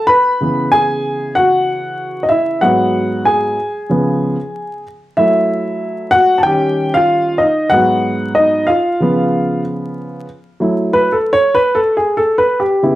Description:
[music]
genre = hip hop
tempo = 94 BPM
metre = 4/4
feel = swing 57% on 16ths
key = F# minor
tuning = A4 = 440 Hz
[part]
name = dark upright piano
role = solo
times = 0.0-13.0 s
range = G#2 to B5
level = -12 LUFS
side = equal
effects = slapback echo
[sound]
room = moderate echo chamber reverb, RT60 1.2 s, small room ambience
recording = vinyl crackle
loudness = -12 LUFS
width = side -15 dB against mid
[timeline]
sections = 0.0-10.3 A section; 10.3-13.0 B section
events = upright piano solo 0.0-10.3, 10.3-13.0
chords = 0.1 C#m7; 2.6 G#m7; 3.9 C#7; 5.2 F#m7; 6.5 D#7; 7.7 G#m7; 9.0 C#7; 10.3 F#m7

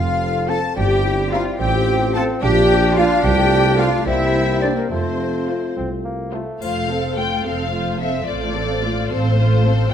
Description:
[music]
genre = cinematic, playful, whimsical film cue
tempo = 72 BPM (dotted quarters)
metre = 6/8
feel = straight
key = F major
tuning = A4 = 439 Hz
[part]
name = concert flute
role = second line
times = 0.0-5.7 s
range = Bb4 to A5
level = -25 LUFS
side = left 2 dB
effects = none
[part]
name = warm studio violin section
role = second line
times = 0.0-9.9 s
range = A4 to A5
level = -27 LUFS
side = left 4 dB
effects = none
[part]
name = mellow French horn section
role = sustained chords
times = 0.0-6.3 s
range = A3 to A4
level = -25 LUFS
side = left 5 dB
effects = none
[part]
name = mellow tuba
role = bass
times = 0.0-6.4 s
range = F1 to C2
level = -23 LUFS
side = right 2 dB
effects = none
[part]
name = rich studio double bass section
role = bass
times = 0.0-9.8 s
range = F1 to F2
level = -22 LUFS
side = right 1 dB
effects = none
[part]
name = warm studio cello section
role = bass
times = 0.0-9.9 s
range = F2 to A4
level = -23 LUFS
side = equal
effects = none
[part]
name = dark studio violin section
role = melody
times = 0.5-9.9 s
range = A4 to G5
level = -26 LUFS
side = left 6 dB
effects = none
[part]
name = warm studio viola section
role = accompaniment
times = 0.5-9.9 s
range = A3 to A4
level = -26 LUFS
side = right 1 dB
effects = none
[part]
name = warm bassoon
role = accompaniment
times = 0.8-6.6 s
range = G3 to D4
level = -24 LUFS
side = right 2 dB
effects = none
[part]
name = triangle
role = percussion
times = 6.6-7.7 s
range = none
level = -44 LUFS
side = left 5 dB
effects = none
[sound]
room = wet recital hall reverb, RT60 1.4 s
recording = none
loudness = -16 LUFS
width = side -8 dB against mid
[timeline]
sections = 0.0-6.6 A section; 6.6-9.9 B section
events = none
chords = 0.0 F; 0.8 C7/G; 1.6 F/A; 2.4 Bb; 3.2 F/C; 4.1 C7; 4.9 F; 8.3 F/A

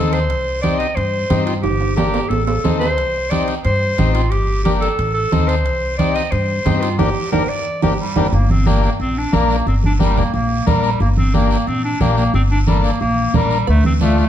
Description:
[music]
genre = latin, cumbia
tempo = 179 BPM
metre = 4/4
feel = straight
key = G minor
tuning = A4 = 437 Hz
[part]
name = bright clarinet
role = melody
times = 0.0-14.3 s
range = G3 to Eb5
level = -20 LUFS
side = equal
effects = none
[part]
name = combo organ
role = accompaniment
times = 0.0-14.3 s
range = A3 to Bb4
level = -22 LUFS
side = left 5 dB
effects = none
[part]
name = upright bass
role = bass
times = 0.0-14.2 s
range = G1 to G2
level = -18 LUFS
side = equal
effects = none
[part]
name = guiro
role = percussion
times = 0.1-14.3 s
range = none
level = -35 LUFS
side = right 4 dB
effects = none
[part]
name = timbales and cowbell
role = percussion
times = 0.1-8.2, 13.7-14.2 s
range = none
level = -27 LUFS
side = right 8 dB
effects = none
[part]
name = congas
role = percussion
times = 0.6-14.2 s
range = none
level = -22 LUFS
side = right 2 dB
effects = none
[sound]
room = moderate large studio reverb, RT60 1.2 s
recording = dark, warm production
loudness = -14 LUFS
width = side -10 dB against mid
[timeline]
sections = 0.0-8.3 A section; 8.3-14.3 B section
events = drum fill 1.6-3.0, 7.0-8.3; band accent 7.0-8.3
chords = 0.3 Cm; 1.6 Gm; 2.3 Adim; 3.0 Cm; 4.3 Gm; 5.0 Adim; 5.7 Cm; 7.0 Gm; 13.7 Dm

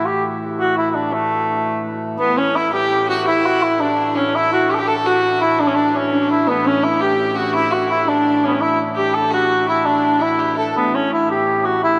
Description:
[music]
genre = medieval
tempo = 112 BPM (dotted quarters)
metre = 6/8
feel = straight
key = A mixolydian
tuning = A4 = 440 Hz
[part]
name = dark cor anglais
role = melody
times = 0.0-12.0 s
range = A3 to A4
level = -19 LUFS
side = equal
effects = none
[part]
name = pipe organ, principal chorus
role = drone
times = 0.0-12.0 s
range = A2 to E3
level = -30 LUFS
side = equal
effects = none
[part]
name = rich fiddle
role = second line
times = 2.2-10.7 s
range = B3 to A4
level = -23 LUFS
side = equal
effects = none
[sound]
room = wet cathedral reverb, RT60 6.8 s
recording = none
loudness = -18 LUFS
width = mono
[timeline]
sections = 0.0-2.2 A section; 2.2-10.7 B section; 10.7-12.0 B section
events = none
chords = none

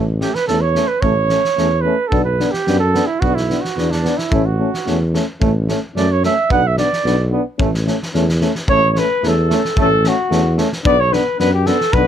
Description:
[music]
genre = balkan folk, Balkan brass band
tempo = 110 BPM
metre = 2/4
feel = straight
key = A mixolydian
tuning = A4 = 438 Hz
[part]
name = clear trombone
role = accompaniment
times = 0.0-12.1 s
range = A3 to B3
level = -23 LUFS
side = right 6 dB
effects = none
[part]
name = warm euphonium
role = accompaniment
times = 0.0-12.1 s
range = C#4 to D4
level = -23 LUFS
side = left 9 dB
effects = none
[part]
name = mellow tuba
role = bass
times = 0.0-12.1 s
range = A1 to F#2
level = -18 LUFS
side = equal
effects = none
[part]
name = warm flugelhorn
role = second line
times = 0.2-7.3, 11.9-12.1 s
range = D4 to F#5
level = -18 LUFS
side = right 6 dB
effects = none
[part]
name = loose indie drum kit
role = percussion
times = 0.2-12.1 s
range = kick drum, snare drum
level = -22 LUFS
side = equal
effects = none
[part]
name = mellow flugelhorn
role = melody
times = 8.7-12.1 s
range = F#4 to D5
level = -16 LUFS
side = left 1 dB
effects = none
[sound]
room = little or no reverb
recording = close, detailed microphones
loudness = -14 LUFS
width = side -9 dB against mid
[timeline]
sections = 0.0-8.7 A section; 8.7-12.1 B section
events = flugelhorn solo 0.0-8.7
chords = 0.0 A; 2.1 Bm; 4.3 A; 6.5 Bm; 7.6 A; 10.9 Bm

